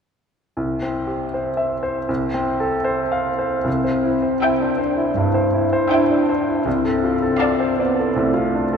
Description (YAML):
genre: classical, romantic movement for piano and orchestra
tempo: 79 BPM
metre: 4/4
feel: rubato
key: C major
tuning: A4 = 440 Hz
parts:
  - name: clear baby grand piano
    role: melody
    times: 0.6-8.8 s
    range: C2 to F5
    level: -20 LUFS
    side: equal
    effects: none
  - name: dark French horn section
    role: sustained chords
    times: 3.7-8.8 s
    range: A3 to E4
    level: -20 LUFS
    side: left 2 dB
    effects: none
  - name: rich studio cello section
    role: bass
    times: 3.7-8.8 s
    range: G2 to C3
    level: -28 LUFS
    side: right 4 dB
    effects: none
  - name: warm studio violin section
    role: melody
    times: 4.4-8.0 s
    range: G5 to A5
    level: -31 LUFS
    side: left 2 dB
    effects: none
  - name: rich studio violin section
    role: second line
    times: 4.4-8.0 s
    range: F5 to G5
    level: -32 LUFS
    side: left 1 dB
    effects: none
  - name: rich studio viola section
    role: accompaniment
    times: 4.4-8.0 s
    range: D5 to E5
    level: -30 LUFS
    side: right 4 dB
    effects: none
room: wet cathedral reverb, RT60 4.9 s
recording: minimal, uncompressed stereo recording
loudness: -18 LUFS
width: side -6 dB against mid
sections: 0.6-3.7 A section; 3.7-8.8 B section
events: none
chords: 0.6 C; 2.1 F/C; 3.7 C; 6.7 Dm7/C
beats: | 0.56 1.33 2.09 2.86 | 3.66 4.42 5.17 5.91 | 6.66 7.41 8.17